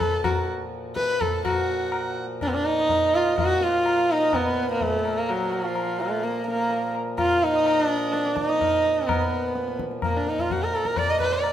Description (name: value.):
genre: indian classical, Hindustani.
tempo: 126 BPM.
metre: 4/4.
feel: straight.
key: Bb raga bhairav.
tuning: A4 = 440 Hz.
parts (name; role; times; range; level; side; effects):
warm sarangi; melody; 0.0-11.5 s; F3 to Eb5; -23 LUFS; equal; none.
pedal harmonium; second line; 0.0-11.5 s; F4 to Cb6; -32 LUFS; right 5 dB; none.
pedal harmonium; drone; 0.0-11.5 s; Bb2 to F3; -34 LUFS; equal; none.
tabla; percussion; 0.0-11.5 s; none; -30 LUFS; left 3 dB; none.
room: moderate scoring stage reverb, RT60 2.0 s.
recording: minimal, uncompressed stereo recording.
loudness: -21 LUFS.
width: side -10 dB against mid.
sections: 0.0-1.4 A section; 1.4-11.5 B section.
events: speeding up 0.0-11.5.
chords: none.